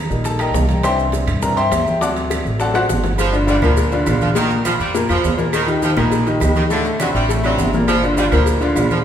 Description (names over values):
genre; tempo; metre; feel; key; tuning
latin, salsa; 205 BPM; 4/4; straight; G minor; A4 = 440 Hz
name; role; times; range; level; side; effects
bright upright piano; accompaniment; 0.0-9.0 s; A2 to D6; -18 LUFS; left 2 dB; none
upright bass; bass; 0.0-9.0 s; G1 to G2; -21 LUFS; right 1 dB; none
bongos and cowbell; percussion; 0.1-8.9 s; none; -28 LUFS; left 4 dB; none
congas; percussion; 0.1-9.0 s; none; -26 LUFS; equal; none
maracas; percussion; 0.1-9.0 s; none; -34 LUFS; right 6 dB; none
timbales and agogo bells; percussion; 0.2-8.9 s; none; -26 LUFS; right 4 dB; none
claves; percussion; 0.4-8.9 s; none; -33 LUFS; right 3 dB; none
edgy saxophone section; second line; 3.2-9.0 s; D3 to G3; -22 LUFS; right 3 dB; none
room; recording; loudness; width
wet recital hall reverb, RT60 1.6 s; recorded in a church or concert hall; -14 LUFS; side -9 dB against mid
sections
0.0-3.2 A section; 3.2-9.0 B section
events
upright piano solo 0.0-3.2; drum fill 2.7-3.2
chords
0.0 Eb; 0.8 Cadd9; 2.0 D7; 3.2 Gm7; 4.4 Bb5; 5.5 Eb; 6.7 D7; 7.9 Gm7